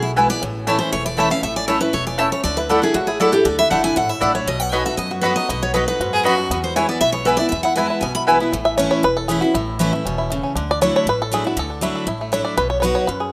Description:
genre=bluegrass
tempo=237 BPM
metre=4/4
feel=straight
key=unclear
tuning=A4 = 441 Hz
part: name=picked steel-string acoustic guitar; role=melody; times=0.0-8.2 s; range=E4 to B5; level=-23 LUFS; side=equal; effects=none
part: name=picked steel-string acoustic guitar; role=accompaniment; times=0.0-13.3 s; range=E2 to F#4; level=-25 LUFS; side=equal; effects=none
part: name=upright bass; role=bass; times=0.0-13.3 s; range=E1 to F#2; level=-32 LUFS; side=equal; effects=none
part: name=mandolin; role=stabs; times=0.2-8.4 s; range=A3 to B5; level=-23 LUFS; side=equal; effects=none
part: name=bluegrass banjo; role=melody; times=0.4-13.3 s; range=F#3 to E5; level=-26 LUFS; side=equal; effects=none
part: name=clear fiddle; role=second line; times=6.1-6.6 s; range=F#4 to G#4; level=-24 LUFS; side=equal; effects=none
room=light reverb, small room ambience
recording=rough home demo mix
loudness=-19 LUFS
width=mono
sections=0.0-8.5 A section; 8.5-13.3 B section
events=five-string banjo solo 8.5-13.3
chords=0.4 A; 2.4 Dadd9; 4.5 B; 6.5 E; 8.5 A; 10.6 Dadd9; 12.6 B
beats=0.17 | 0.42 0.68 0.93 1.18 | 1.44 1.69 1.94 2.19 | 2.45 2.70 2.95 3.21 | 3.46 3.71 3.97 4.22 | 4.47 4.73 4.98 5.23 | 5.49 5.74 6.00 6.25 | 6.50 6.76 7.01 7.26 | 7.52 7.77 8.03 8.28 | 8.53 8.79 9.04 9.29 | 9.54 9.80 10.05 10.30 | 10.56 10.81 11.06 11.32 | 11.57 11.82 12.07 12.33 | 12.58 12.83 13.09

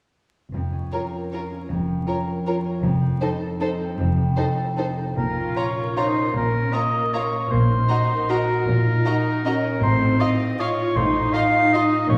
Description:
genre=classical, orchestral ballroom waltz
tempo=156 BPM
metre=3/4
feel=uneven beats, rubato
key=Bb minor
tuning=A4 = 440 Hz
part: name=concert harp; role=arpeggios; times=0.5-12.2 s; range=F2 to F5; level=-29 LUFS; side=equal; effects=none
part: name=rich studio cello section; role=bass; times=0.5-12.2 s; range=F2 to Bb2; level=-30 LUFS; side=equal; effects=none
part: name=rich studio double bass section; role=bass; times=0.5-12.2 s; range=F1 to Bb1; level=-28 LUFS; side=equal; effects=none
part: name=rich studio violin section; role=melody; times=0.9-11.8 s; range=C5 to Bb5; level=-38 LUFS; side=equal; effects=none
part: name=rich studio violin section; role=second line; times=0.9-11.8 s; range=F4 to Eb5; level=-33 LUFS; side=equal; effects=none
part: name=rich studio viola section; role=accompaniment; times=0.9-12.2 s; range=Bb3 to Gb4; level=-28 LUFS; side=equal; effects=none
part: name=clear oboe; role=second line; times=5.2-12.2 s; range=Bb4 to F5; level=-25 LUFS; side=equal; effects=none
room=wet scoring stage reverb, RT60 1.6 s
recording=heard from further back in the room, vinyl crackle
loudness=-22 LUFS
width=mono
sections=0.5-5.2 A section; 5.2-12.2 B section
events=none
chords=0.5 Bbm/F; 2.8 F7; 5.2 Bbm; 7.5 Ebm/Bb; 9.8 F7/A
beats=| 0.53 0.92 1.32 | 1.70 2.07 2.46 | 2.83 3.20 3.60 | 3.98 4.37 4.78 | 5.17 5.57 5.97 | 6.35 6.73 7.13 | 7.51 7.89 8.30 | 8.67 9.06 9.45 | 9.82 10.20 10.60 | 10.97 11.34 11.74 | 12.11

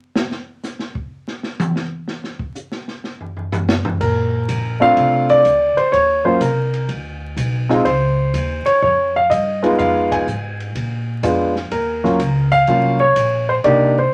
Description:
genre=jazz piano trio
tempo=124 BPM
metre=4/4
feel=swing 67% on 8ths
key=Bb major from 4.0 s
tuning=A4 = 439 Hz
part: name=open jazz drum kit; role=drums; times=0.2-13.8 s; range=crash cymbal, hi-hat, kick drum, ride cymbal, snare drum, toms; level=-28 LUFS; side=equal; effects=none
part: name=warm grand piano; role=melody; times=4.0-14.1 s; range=Gb3 to Ab5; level=-17 LUFS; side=equal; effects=none
part: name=upright bass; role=bass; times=4.0-14.1 s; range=Bb1 to Bb2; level=-24 LUFS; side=equal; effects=none
room=moderate studio ambience, RT60 0.5 s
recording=vinyl crackle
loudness=-17 LUFS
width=mono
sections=0.0-4.0 A section; 4.0-14.1 B section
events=drum solo 0.0-4.0; band accent 10.0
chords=0.0 N.C.; 4.0 Bbmaj9; 5.9 Eb7(no3); 6.9 Bm; 7.9 Dbmaj7; 9.8 Fm7b5; 10.8 Bb7b9; 11.7 Ebm7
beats=| 0.15 0.63 1.11 1.59 | 2.08 2.56 3.04 3.52 | 4.00 4.48 4.96 5.45 | 5.93 6.41 6.89 7.38 | 7.86 8.34 8.82 9.30 | 9.79 10.27 10.75 11.23 | 11.71 12.20 12.68 13.16 | 13.64 14.12

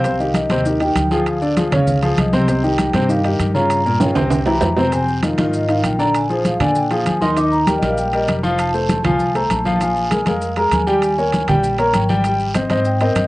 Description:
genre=Afro-Cuban jazz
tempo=197 BPM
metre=4/4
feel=straight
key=C minor, F minor from 4.9 s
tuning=A4 = 440 Hz
part: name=vibraphone with soft mallets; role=melody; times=0.0-13.3 s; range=Bb4 to D6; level=-21 LUFS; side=right 1 dB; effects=plate reverb
part: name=warm baby grand piano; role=accompaniment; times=0.0-13.3 s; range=Bb2 to G5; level=-18 LUFS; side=left 1 dB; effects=cassette tape, plate reverb
part: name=upright bass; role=bass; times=0.0-13.3 s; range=F1 to Bb2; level=-23 LUFS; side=equal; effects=none
part: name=congas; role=percussion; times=0.0-13.3 s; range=none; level=-22 LUFS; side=equal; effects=none
part: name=guiro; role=percussion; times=0.0-13.3 s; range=none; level=-36 LUFS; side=right 3 dB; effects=none
part: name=maracas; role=percussion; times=0.0-13.3 s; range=none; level=-39 LUFS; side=left 2 dB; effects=none
part: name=timbales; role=percussion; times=0.0-13.3 s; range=none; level=-24 LUFS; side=right 4 dB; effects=none
room=moderate studio reverb, RT60 0.5 s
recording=home recording on cassette, nothing above 10.3 kHz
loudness=-15 LUFS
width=side -19 dB against mid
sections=0.0-4.9 A section; 4.9-13.3 A section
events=vibraphone solo 0.0-13.3; drum fill 4.0-4.9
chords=0.0 Cmadd9; 1.3 Ddim; 1.9 Dbadd9; 2.5 Cm; 3.7 Gm7b5; 4.3 C7; 4.9 Fm7; 6.1 Bb7; 7.4 Ebadd9; 8.6 F; 9.8 Bb5; 11.0 Eb7; 12.2 Abmaj7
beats=| 0.05 0.35 0.66 0.96 | 1.26 1.57 1.87 2.18 | 2.48 2.79 3.09 3.40 | 3.70 4.01 4.31 4.62 | 4.92 5.23 5.53 5.84 | 6.14 6.45 6.75 7.06 | 7.37 7.67 7.97 8.28 | 8.59 8.89 9.20 9.50 | 9.80 10.11 10.41 10.72 | 11.03 11.33 11.63 11.94 | 12.24 12.55 12.85 13.16

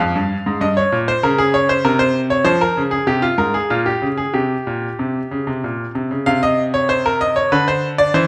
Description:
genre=classical, baroque-style two-part invention for grand piano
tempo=96 BPM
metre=3/4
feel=straight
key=F minor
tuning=A4 = 438 Hz
part: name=bright grand piano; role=solo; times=0.0-8.3 s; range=F2 to F5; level=-18 LUFS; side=equal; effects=none
room=moderate recital hall reverb, RT60 1.5 s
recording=none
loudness=-18 LUFS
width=mono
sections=0.0-6.3 A section; 6.3-8.3 B section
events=none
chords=0.0 Fmadd9; 0.6 Gdim; 1.9 Bbmadd9/C; 2.5 Fm; 3.7 Bbm; 4.3 C5; 6.3 F5/C; 7.5 Bm/D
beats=0.00 | 0.62 1.24 1.85 | 2.46 3.07 3.70 | 4.34 4.99 5.63 | 6.26 6.89 7.51 | 8.14

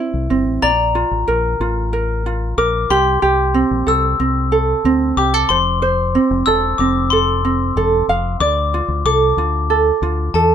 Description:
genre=acoustic pop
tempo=93 BPM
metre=4/4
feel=straight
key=F major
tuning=A4 = 440 Hz
part: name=ukulele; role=accompaniment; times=0.0-10.5 s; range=C4 to F5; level=-17 LUFS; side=right 4 dB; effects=none
part: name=deep dub fingered electric bass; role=bass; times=0.1-10.5 s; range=E1 to E2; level=-20 LUFS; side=left 1 dB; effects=none
part: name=glockenspiel with hard plastic mallets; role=second line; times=0.6-10.5 s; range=A5 to E6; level=-19 LUFS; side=left 7 dB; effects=none
room=light reverb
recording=none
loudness=-14 LUFS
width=side -8 dB against mid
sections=0.6-10.5 A section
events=none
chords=0.0 Cadd9; 0.6 Bb; 2.9 C6; 5.5 F; 8.4 Dm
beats=| 0.63 1.28 1.93 2.58 | 3.23 3.88 4.53 5.17 | 5.82 6.47 7.12 7.76 | 8.41 9.05 9.70 10.35

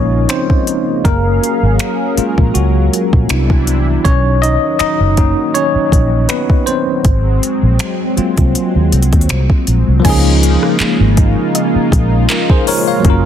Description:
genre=contemporary R&B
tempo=80 BPM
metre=4/4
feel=swing 54% on 16ths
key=Db major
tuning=A4 = 440 Hz
part: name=barky tine electric piano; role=accompaniment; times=0.0-13.3 s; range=F3 to F5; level=-16 LUFS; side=left 1 dB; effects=medium stereo tremolo
part: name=warm analog pad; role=sustained chords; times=0.0-13.3 s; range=C3 to F5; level=-19 LUFS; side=equal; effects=chorus
part: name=vintage muted fingered electric bass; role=bass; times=0.0-13.3 s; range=Gb1 to Eb2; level=-13 LUFS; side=equal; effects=none
part: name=smooth R&B drum kit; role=drums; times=0.3-13.2 s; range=crash cymbal, finger snaps, handclaps, hi-hat, kick drum, rim click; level=-14 LUFS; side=equal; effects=overdrive
part: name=soft round pluck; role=texture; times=10.0-13.3 s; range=Eb5 to Ab5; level=-26 LUFS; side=right 5 dB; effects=chorus, tape echo
room=little or no reverb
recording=dense, heavily limited modern master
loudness=-10 LUFS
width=side -10 dB against mid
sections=0.0-10.0 A section; 10.0-13.3 B section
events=tine electric piano solo 0.0-10.0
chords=0.0 Db69; 1.0 Gbmaj7; 3.3 Cmaj9; 4.0 Cbmaj9; 7.0 Ab13; 10.0 Db69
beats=0.30 | 1.05 1.80 2.55 3.30 | 4.05 4.80 5.55 6.30 | 7.05 7.80 8.55 9.30 | 10.05 10.80 11.55 12.30 | 13.05

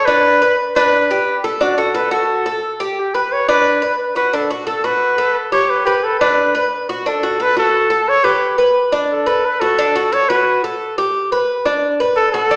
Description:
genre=latin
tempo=176 BPM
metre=4/4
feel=straight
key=unclear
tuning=A4 = 440 Hz
part: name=warm trumpet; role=melody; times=0.0-12.6 s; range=F#4 to C#5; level=-15 LUFS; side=equal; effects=none
part: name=Cuban tres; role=arpeggios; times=0.0-12.6 s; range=D4 to B4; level=-17 LUFS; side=equal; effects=none
room=wet large studio reverb, RT60 1.3 s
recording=heard from further back in the room, small speaker sound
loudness=-13 LUFS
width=side -39 dB against mid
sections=0.0-1.6 A section; 1.6-12.5 B section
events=trumpet solo 1.6-12.5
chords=0.2 G; 1.6 D; 3.0 G (rootless); 4.3 D; 5.7 G (rootless); 7.1 D; 8.4 G (rootless); 9.8 D; 11.1 G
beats=| 0.24 0.58 0.93 1.27 | 1.61 1.95 2.29 2.63 | 2.97 3.31 3.65 3.99 | 4.33 4.67 5.01 5.36 | 5.70 6.04 6.38 6.72 | 7.06 7.40 7.74 8.08 | 8.42 8.76 9.10 9.44 | 9.78 10.12 10.46 10.80 | 11.14 11.48 11.82 12.17 | 12.51

